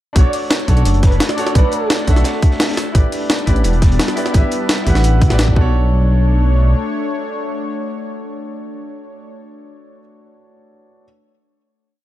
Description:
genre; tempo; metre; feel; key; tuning
liquid drum and bass; 172 BPM; 4/4; straight; B minor; A4 = 440 Hz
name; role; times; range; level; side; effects
clear grand piano; accompaniment; 0.1-11.1 s; D4 to F#5; -24 LUFS; right 1 dB; ping-pong delay
breathy flute-like synth lead; melody; 0.2-1.9 s; B4 to D5; -25 LUFS; right 1 dB; ensemble chorus, ping-pong delay
lush unison pad; sustained chords; 0.4-9.3 s; G3 to C#5; -24 LUFS; left 2 dB; chorus, sidechain pumping
dark detuned saw bass; bass; 0.2-6.7 s; E1 to D2; -14 LUFS; equal; none
crunchy breakbeat drum kit; drums; 0.2-5.5 s; hi-hat, snare drum; -29 LUFS; equal; high-pass filter on hats, high-pass filter on snare, high-pass filter on room
electronic kick drum; drums; 0.2-5.6 s; none; -13 LUFS; equal; none
jungle sampler-style drum kit; drums; 0.2-5.5 s; hi-hat, snare drum; -19 LUFS; equal; none
room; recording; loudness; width
small room ambience; dark, warm production; -13 LUFS; side -14 dB against mid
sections
0.2-5.7 drop; 5.7-8.5 final hit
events
drop 0.2-5.7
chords
0.2 Bm7; 2.9 A9sus4; 5.6 Bm7

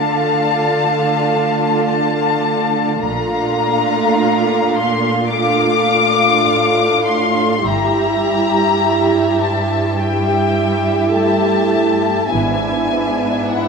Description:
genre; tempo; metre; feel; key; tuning
classical, slow romantic movement for string orchestra; 52 BPM; 4/4; rubato; unclear; A4 = 444 Hz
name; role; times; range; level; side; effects
dark studio violin section; melody; 0.0-13.7 s; F#5 to D6; -18 LUFS; left 6 dB; none
dark studio violin section; second line; 0.0-13.7 s; E4 to F5; -20 LUFS; equal; none
dark studio viola section; accompaniment; 0.0-13.7 s; G3 to E4; -18 LUFS; right 2 dB; none
rich studio cello section; bass; 0.0-13.7 s; G2 to D3; -23 LUFS; right 2 dB; none
dark studio double bass section; bass; 3.0-13.5 s; G1 to Bb1; -26 LUFS; right 4 dB; none
room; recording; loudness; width
moderate concert hall reverb, RT60 2.1 s; none; -13 LUFS; side -5 dB against mid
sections
0.0-13.7 A section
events
none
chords
0.0 Dm; 3.0 Bbmaj7; 7.6 Edim/G; 12.3 E7/G#

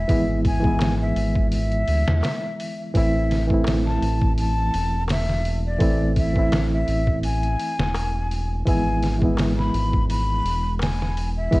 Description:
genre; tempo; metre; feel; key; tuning
trip hop; 84 BPM; 4/4; swing 54% on 16ths; A harmonic minor; A4 = 440 Hz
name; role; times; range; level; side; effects
breathy jazz flute; melody; 0.0-11.6 s; D5 to B5; -28 LUFS; left 1 dB; vintage 12-bit sampler grit, tape echo
reed electric piano; accompaniment; 0.0-11.6 s; E3 to E4; -25 LUFS; equal; harmonic tremolo, tape echo
round analog bass; bass; 0.0-11.6 s; E1 to E2; -23 LUFS; equal; tube saturation
trip hop sampler-style drum kit; drums; 0.1-11.6 s; hi-hat, kick drum, snare drum; -25 LUFS; equal; small room ambience
darbuka; percussion; 0.8-11.0 s; none; -36 LUFS; left 2 dB; none
room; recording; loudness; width
light reverb; worn, warbling old tape, cassette tape, warbly pitch drift; -19 LUFS; side -20 dB against mid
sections
0.0-11.6 A section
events
none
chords
0.0 E; 3.0 Am; 8.7 E

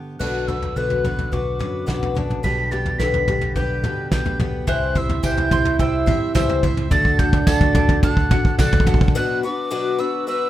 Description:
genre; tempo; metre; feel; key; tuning
indie folk with a building arrangement; 107 BPM; 4/4; straight; unclear; A4 = 439 Hz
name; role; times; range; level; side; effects
fingerpicked steel-string acoustic guitar; accompaniment; 0.0-6.9 s; F#2 to G4; -30 LUFS; right 1 dB; none
mellow hollow tin whistle; melody; 0.2-10.5 s; D6 to B6; -26 LUFS; right 2 dB; tape echo
picked twelve-string acoustic guitar; accompaniment; 0.2-10.5 s; B2 to C5; -25 LUFS; left 6 dB; none
fingered electric bass; bass; 0.2-9.1 s; B1 to D2; -25 LUFS; equal; none
soft brush drum kit; drums; 0.2-9.2 s; crash cymbal, kick drum, snare drum, toms; -20 LUFS; equal; none
dark French horn; second line; 4.7-8.8 s; D4 to E4; -24 LUFS; right 6 dB; none
bowl-back mandolin; arpeggios; 4.7-9.2 s; C5 to D6; -30 LUFS; right 10 dB; none
tambourine; percussion; 5.2-8.7 s; none; -37 LUFS; right 7 dB; none
warm brass ensemble; sustained chords; 9.2-10.5 s; B2 to F#4; -36 LUFS; right 5 dB; none
room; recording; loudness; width
studio reverb; rough home demo mix; -17 LUFS; side -13 dB against mid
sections
0.2-9.2 A section; 9.2-10.5 B section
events
build-up 0.2-9.2; drum fill 0.2-9.2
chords
0.2 Bm; 2.4 G/B; 4.7 C; 6.9 D; 9.2 Bm

